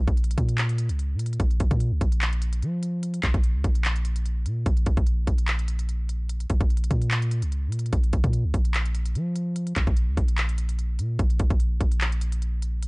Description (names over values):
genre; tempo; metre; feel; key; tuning
hip hop, trap; 147 BPM; 4/4; half-time; Bb minor; A4 = 440 Hz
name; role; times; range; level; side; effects
long sustained 808-style bass; bass; 0.0-12.9 s; Bb1 to F3; -24 LUFS; equal; none
trap drum kit; drums; 0.1-12.9 s; handclaps, hi-hat, kick drum; -25 LUFS; equal; none
room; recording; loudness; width
little or no reverb; dry, gritty hardware recording, cassette tape, nothing above 10.4 kHz; -22 LUFS; side -29 dB against mid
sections
0.0-12.9 A section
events
none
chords
none